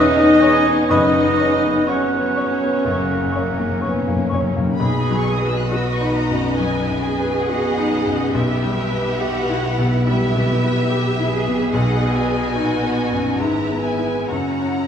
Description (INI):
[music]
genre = classical, romantic movement for piano and orchestra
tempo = 61-73 BPM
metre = 4/4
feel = rubato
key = B major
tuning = A4 = 437 Hz
[part]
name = clear grand piano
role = melody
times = 0.0-14.9 s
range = B1 to E6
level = -21 LUFS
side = left 2 dB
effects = none
[part]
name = rich studio violin section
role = melody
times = 0.0-14.9 s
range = C#5 to F#6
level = -29 LUFS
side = left 2 dB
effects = none
[part]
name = concert flute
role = second line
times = 0.0-4.4 s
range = C#6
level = -32 LUFS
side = left 2 dB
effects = none
[part]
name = dark cor anglais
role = second line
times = 0.0-4.3 s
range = F#5 to G#5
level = -26 LUFS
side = right 4 dB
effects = none
[part]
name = rich symphonic violin section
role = second line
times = 0.0-14.9 s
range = G#3 to F#5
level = -28 LUFS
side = left 2 dB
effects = none
[part]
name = warm clarinet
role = second line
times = 0.0-3.8 s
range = C#5 to D#5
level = -26 LUFS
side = left 2 dB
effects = none
[part]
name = rich studio viola section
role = accompaniment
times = 0.0-14.9 s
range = B3 to G4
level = -25 LUFS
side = equal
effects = none
[part]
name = warm bassoon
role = accompaniment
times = 0.0-4.8 s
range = F#3 to C#4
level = -27 LUFS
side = right 4 dB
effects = none
[part]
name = mellow French horn section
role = sustained chords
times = 0.0-3.8 s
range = C#4 to D#4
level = -21 LUFS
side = left 2 dB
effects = none
[part]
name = warm trumpet section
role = stabs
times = 0.0-3.8 s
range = C#5 to D#5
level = -23 LUFS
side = right 3 dB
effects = none
[part]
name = rich studio cello section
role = bass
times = 0.9-14.9 s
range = F#2 to G#4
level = -28 LUFS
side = right 3 dB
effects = none
[part]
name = rich studio double bass section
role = bass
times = 0.9-14.9 s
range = F#1 to B1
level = -26 LUFS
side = right 2 dB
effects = none
[part]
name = timpani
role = percussion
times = 0.9-4.7, 11.7-12.9 s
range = F#2 to B2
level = -26 LUFS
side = left 2 dB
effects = none
[sound]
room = wet recital hall reverb, RT60 1.4 s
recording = small room ambience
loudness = -16 LUFS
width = side -8 dB against mid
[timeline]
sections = 0.0-4.8 A section; 4.8-14.9 B section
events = timpani fill 2.9-4.8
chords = 0.0 C#m7/E; 0.9 F#sus4; 2.9 F#; 4.8 B; 8.3 Em/B; 11.7 B; 13.4 E/G#; 14.3 F#7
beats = | 0.91 1.88 2.85 3.82 | 4.78 5.69 6.58 7.46 | 8.33 9.20 10.05 10.89 | 11.71 12.54 13.39 14.29